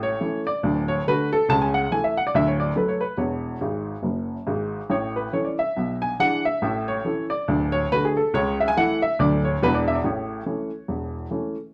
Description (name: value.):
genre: jazz, stride piano.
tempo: 140 BPM.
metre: 4/4.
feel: swing 58% on 8ths.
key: A major.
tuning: A4 = 440 Hz.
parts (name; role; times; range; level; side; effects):
warm upright piano; solo; 0.0-11.5 s; D1 to A5; -24 LUFS; equal; none.
room: wet studio reverb, RT60 0.5 s.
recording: heard from further back in the room.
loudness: -24 LUFS.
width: mono.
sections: 0.0-11.7 A section.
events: upright piano fill 3.6-4.9.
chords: 0.0 A; 0.6 D; 1.5 A/C#; 2.3 D; 3.2 E6; 4.0 F#sus2; 4.9 A; 5.8 E7/B; 6.6 A; 7.5 D; 8.3 A/C#; 9.2 D; 9.6 E7; 10.0 A.